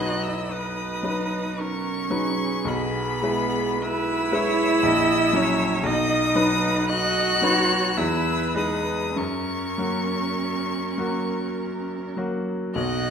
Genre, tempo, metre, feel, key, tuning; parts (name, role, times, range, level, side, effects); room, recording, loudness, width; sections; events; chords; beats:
classical, slow romantic movement for piano quartet; 48-60 BPM; 3/4; rubato; A4 = 440 Hz
clear violin; melody; 0.0-13.1 s; B5 to F#6; -28 LUFS; left 5 dB
rich cello; second line; 0.0-13.1 s; B3 to F#4; -26 LUFS; right 4 dB
clear baby grand piano; accompaniment; 0.0-13.1 s; A#1 to C#5; -25 LUFS; left 2 dB
rich viola; accompaniment; 0.0-13.1 s; G#4 to D#5; -31 LUFS; right 3 dB
wet recital hall reverb, RT60 1.4 s; -21 LUFS; side -7 dB against mid
0.0-13.1 A section
0.0 B; 2.7 E/B; 4.8 F#7/A#; 5.8 B; 8.0 E; 9.2 F#
0.51 1.58 | 2.66 3.81 4.84 | 5.85 6.89 7.99 | 9.17 10.38 11.58 | 12.75